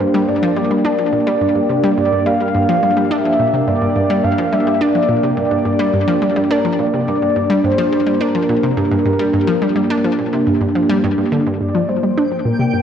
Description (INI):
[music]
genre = ambient, sequencer-driven space music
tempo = 106 BPM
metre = 4/4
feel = straight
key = G minor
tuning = A4 = 440 Hz
[part]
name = mellow horn-like synth lead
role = melody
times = 0.0-12.8 s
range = Bb4 to F5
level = -19 LUFS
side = left 1 dB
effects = wide subtle chorus, ping-pong delay
[part]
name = sweeping resonant pad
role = sustained chords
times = 0.0-12.8 s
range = Bb3 to G4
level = -17 LUFS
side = right 2 dB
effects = wide subtle chorus
[part]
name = analog pluck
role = riff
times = 0.0-12.8 s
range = G2 to D4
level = -19 LUFS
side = left 1 dB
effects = chorus, ping-pong delay
[part]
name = twinkling granular texture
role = texture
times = 12.3-12.8 s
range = G5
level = -27 LUFS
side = right 4 dB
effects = built-in reverb
[sound]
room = wet concert hall reverb, RT60 2.2 s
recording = worn, warbling old tape, cassette tape, warbly pitch drift, nothing above 11.0 kHz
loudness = -14 LUFS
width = side -8 dB against mid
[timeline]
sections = 0.0-11.6 A section; 11.6-12.8 B section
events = none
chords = 0.0 Gm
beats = | 0.28 0.85 1.42 1.98 | 2.55 3.11 3.68 4.25 | 4.81 5.38 5.94 6.51 | 7.08 7.64 8.21 8.77 | 9.34 9.90 10.47 11.04 | 11.60 12.17 12.73